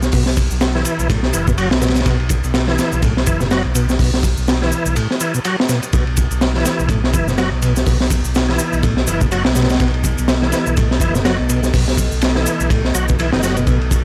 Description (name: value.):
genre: breakbeat, breaks.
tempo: 124 BPM.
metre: 4/4.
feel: swing 58% on 16ths.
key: unclear.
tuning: A4 = 440 Hz.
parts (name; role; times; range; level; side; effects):
overdriven fingered electric bass; bass; 0.0-14.0 s; F#1 to B1; -22 LUFS; equal; none.
crunchy breakbeat drum kit; drums; 0.0-14.0 s; hi-hat, kick drum, ride cymbal, snare drum; -20 LUFS; equal; none.
shaker; drums; 0.0-14.0 s; none; -30 LUFS; equal; none.
bright tonewheel organ; riff; 0.1-13.8 s; A2 to F#3; -23 LUFS; equal; overdrive, chorus vibrato, fast rotary speaker, low-pass filter, tape echo.
dark analog pad; sustained chords; 7.6-14.0 s; B3 to F#5; -30 LUFS; equal; chorus, sidechain pumping.
room: small room ambience.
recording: dry, gritty hardware recording.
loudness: -17 LUFS.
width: mono.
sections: 0.0-14.0 A section.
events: none.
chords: 0.0 B7.